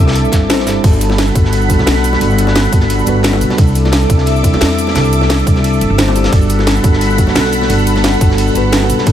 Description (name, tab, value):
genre	liquid drum and bass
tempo	175 BPM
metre	4/4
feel	straight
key	G major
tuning	A4 = 443 Hz
part	mellow tine electric piano	accompaniment	0.0-9.1 s	G3 to C5	-16 LUFS	left 1 dB	slow stereo tremolo, ping-pong delay
part	lush unison pad	sustained chords	0.0-9.1 s	A4 to D6	-18 LUFS	equal	chorus, phaser
part	upright bass	bass	0.0-9.1 s	G1 to E2	-15 LUFS	equal	none
part	crunchy breakbeat drum kit	drums	0.1-9.1 s	hi-hat, snare drum	-25 LUFS	equal	high-pass filter on hats, high-pass filter on snare, high-pass filter on room
part	drum and bass drum kit	drums	0.2-9.1 s	crash cymbal, hi-hat, ride cymbal, shaker, snare drum	-19 LUFS	equal	overdrive
part	electronic kick drum	drums	0.3-9.1 s	none	-11 LUFS	equal	overdrive
part	bongos	percussion	1.1-9.1 s	none	-26 LUFS	left 2 dB	none
room	light reverb, small room ambience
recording	none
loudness	-9 LUFS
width	side -10 dB against mid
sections	0.0-9.1 A section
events	kick drops out 0.5-0.8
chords	0.0 C69; 0.8 Gmaj9; 3.6 C69; 6.3 Gmaj9